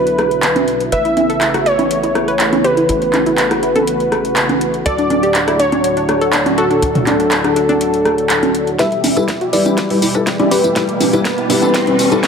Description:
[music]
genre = progressive house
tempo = 122 BPM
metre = 4/4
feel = straight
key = E dorian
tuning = A4 = 441 Hz
[part]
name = plucky unison lead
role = melody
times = 0.0-12.3 s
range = A4 to E5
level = -17 LUFS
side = equal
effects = digital delay
[part]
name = filtered supersaw swell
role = sustained chords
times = 0.0-12.3 s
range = A2 to G4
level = -21 LUFS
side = right 1 dB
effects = sidechain pumping
[part]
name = analog pluck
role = arpeggios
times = 0.0-12.3 s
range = D4 to B4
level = -21 LUFS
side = left 1 dB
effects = chorus, sidechain pumping, digital delay
[part]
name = tight sequencer bass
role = bass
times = 0.0-12.3 s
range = E1 to A2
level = -30 LUFS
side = equal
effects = sidechain pumping, high-pass filter
[part]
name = deep house drum kit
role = drums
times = 0.1-12.3 s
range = handclaps, hi-hat, snare drum, tambourine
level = -20 LUFS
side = equal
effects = overdrive, high-pass filter on hats, high-pass filter on snare, high-pass filter on perc
[part]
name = punchy analog drum machine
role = percussion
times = 0.2-11.7 s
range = congas, rim click, toms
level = -19 LUFS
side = right 1 dB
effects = sidechain pumping on snare, sidechain pumping on perc, sidechain pumping on toms
[part]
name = felt-muted upright piano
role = stabs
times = 8.8-12.2 s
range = G3 to D5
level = -17 LUFS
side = left 4 dB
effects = sidechain pumping, low-pass filter, digital delay
[part]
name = electronic kick drum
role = drums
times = 8.8-12.3 s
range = none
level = -24 LUFS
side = equal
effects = overdrive, high-pass filter on kick
[part]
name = riser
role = sound effects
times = 10.1-12.3 s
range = none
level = -21 LUFS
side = right 1 dB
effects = none
[sound]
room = moderate lush hall reverb, RT60 2.0 s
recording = none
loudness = -12 LUFS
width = side -6 dB against mid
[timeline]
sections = 0.0-8.8 A section; 8.8-12.3 B section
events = filter sweep on supersaw synth 0.0-8.8; build-up 8.8-12.3; drum fill 8.8-12.3; filter sweep on synth pluck 8.8-12.3; filter sweep on felt piano 8.8-12.3; filter sweep on digital synth lead 8.8-12.3; riser 10.1-12.3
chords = 0.0 Bm; 0.9 Aadd9; 4.9 D; 8.8 Em

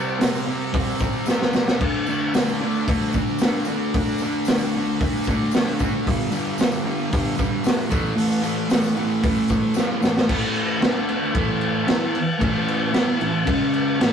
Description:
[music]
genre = garage rock duo or trio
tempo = 113 BPM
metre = 4/4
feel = straight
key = unclear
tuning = A4 = 440 Hz
[part]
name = thick fuzz guitar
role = riff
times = 0.0-14.1 s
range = G2 to E4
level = -22 LUFS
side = equal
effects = distortion
[part]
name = tambourine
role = percussion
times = 0.1-10.2 s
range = none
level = -42 LUFS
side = left 4 dB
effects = none
[part]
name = raw garage drum kit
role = drums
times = 0.2-14.1 s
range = crash cymbal, hi-hat, kick drum, snare drum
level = -22 LUFS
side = equal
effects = none
[sound]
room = wet booth ambience, RT60 0.2 s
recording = rough rehearsal-room recording, warm saturation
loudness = -19 LUFS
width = side -7 dB against mid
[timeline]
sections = 0.0-10.3 A section; 10.3-14.1 B section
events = drum fill 1.3-1.8, 9.8-10.3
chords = 0.0 C5; 1.8 D5; 6.1 G5; 7.9 A5; 10.8 D5; 11.4 A5; 13.5 C#5

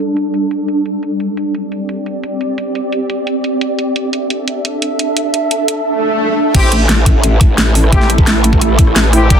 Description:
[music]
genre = dark technical drum and bass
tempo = 174 BPM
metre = 4/4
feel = straight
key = A minor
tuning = A4 = 440 Hz
[part]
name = swarming drone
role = sustained chords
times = 0.0-9.4 s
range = G3 to E5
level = -16 LUFS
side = right 1 dB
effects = built-in reverb, sidechain pumping
[part]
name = dubstep drum kit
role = drums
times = 0.2-9.4 s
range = crash cymbal, hi-hat, rim click, snare drum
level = -16 LUFS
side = equal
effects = low-pass filter on hats, low-pass filter on cymbals, low-pass filter on snare
[part]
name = swell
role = sound effects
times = 5.9-6.5 s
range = none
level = -18 LUFS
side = right 1 dB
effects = none
[part]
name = clear brass ensemble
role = stabs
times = 6.5-9.4 s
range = Bb3 to G4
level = -19 LUFS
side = left 3 dB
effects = digital delay
[part]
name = growl bass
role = bass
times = 6.5-9.4 s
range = G1 to A1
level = -13 LUFS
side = equal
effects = chorus, overdrive, sidechain pumping
[part]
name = electronic kick drum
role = drums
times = 6.5-9.4 s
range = none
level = -10 LUFS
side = equal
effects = none
[sound]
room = light reverb, digital ambience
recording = dense, heavily limited modern master, low-pass filter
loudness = -12 LUFS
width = side -8 dB against mid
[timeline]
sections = 0.0-6.5 A section; 6.5-9.4 B section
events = filter sweep on drum 0.0-6.5; filter sweep on synth drone 0.0-6.5; filter sweep 0.0-6.5; swell 5.9-6.5; drop 6.5-9.4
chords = 0.0 G5; 1.0 Csus2; 3.8 Dsus2; 6.5 Am7

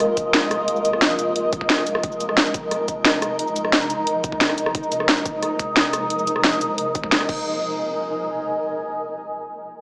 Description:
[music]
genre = dark technical drum and bass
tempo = 177 BPM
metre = 4/4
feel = straight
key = F minor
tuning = A4 = 441 Hz
[part]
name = swarming drone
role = sustained chords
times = 0.0-7.4 s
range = C3 to F4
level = -29 LUFS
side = equal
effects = built-in reverb, sidechain pumping
[part]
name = drum and bass drum kit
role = drums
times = 0.0-7.4 s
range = crash cymbal, hi-hat, rim click, shaker, snare drum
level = -19 LUFS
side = equal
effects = overdrive
[part]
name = granular cloud pad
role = texture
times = 0.0-8.8 s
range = Bb4 to Eb6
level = -23 LUFS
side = equal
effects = built-in reverb, sidechain pumping
[part]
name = electronic kick drum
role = drums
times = 0.2-7.4 s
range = none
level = -29 LUFS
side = equal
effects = overdrive
[sound]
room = moderate lush hall reverb, RT60 2.2 s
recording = small speaker sound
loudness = -18 LUFS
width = side -30 dB against mid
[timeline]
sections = 0.0-7.5 A section; 7.5-8.8 B section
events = none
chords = 0.0 Fm; 7.5 Bb7sus4

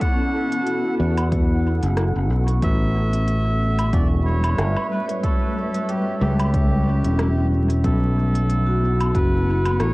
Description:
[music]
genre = ambient dub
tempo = 92 BPM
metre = 4/4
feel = swing 56% on 16ths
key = unclear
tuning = A4 = 436 Hz
[part]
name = melodica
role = melody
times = 0.0-9.9 s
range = G4 to F#5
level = -29 LUFS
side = right 1 dB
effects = cassette tape, dub echo, plate reverb
[part]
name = granular cloud pad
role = sustained chords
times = 0.0-9.9 s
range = G3 to A5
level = -28 LUFS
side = left 1 dB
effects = built-in reverb, cassette tape
[part]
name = vibraphone with medium hard mallets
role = arpeggios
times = 0.0-9.9 s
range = C#4 to C#6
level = -27 LUFS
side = equal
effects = cassette tape, analog delay
[part]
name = electronic kick drum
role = drums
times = 0.0-9.3 s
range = none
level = -22 LUFS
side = equal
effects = overdrive, cassette tape
[part]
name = organic electronic drum kit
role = drums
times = 0.0-9.9 s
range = hi-hat, rim click, woodblock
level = -31 LUFS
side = equal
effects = cassette tape, dub echo
[part]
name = fingered electric bass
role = bass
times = 1.0-9.9 s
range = E1 to E2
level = -19 LUFS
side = equal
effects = tube saturation
[sound]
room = moderate booth ambience, RT60 0.2 s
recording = home recording on cassette, vinyl crackle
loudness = -18 LUFS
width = side -21 dB against mid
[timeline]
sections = 0.0-9.9 A section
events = none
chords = 0.0 B7(no3); 2.6 A7; 7.8 Bm7

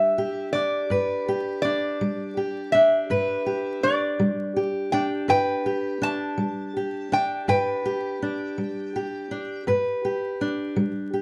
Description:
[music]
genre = acoustic country blues, solo or duo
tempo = 55 BPM (dotted quarters)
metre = 12/8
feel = straight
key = G major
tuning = A4 = 439 Hz
[part]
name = metal-body resonator slide guitar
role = melody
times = 0.0-9.6 s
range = D5 to A5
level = -26 LUFS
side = equal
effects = plate reverb
[part]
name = fingerpicked steel-string acoustic guitar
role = accompaniment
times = 0.0-11.2 s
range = G2 to B4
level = -28 LUFS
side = equal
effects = none
[sound]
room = moderate small room reverb, RT60 0.5 s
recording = dark, warm production, vinyl crackle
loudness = -25 LUFS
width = mono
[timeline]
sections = 0.0-11.2 A section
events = none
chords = 0.0 G

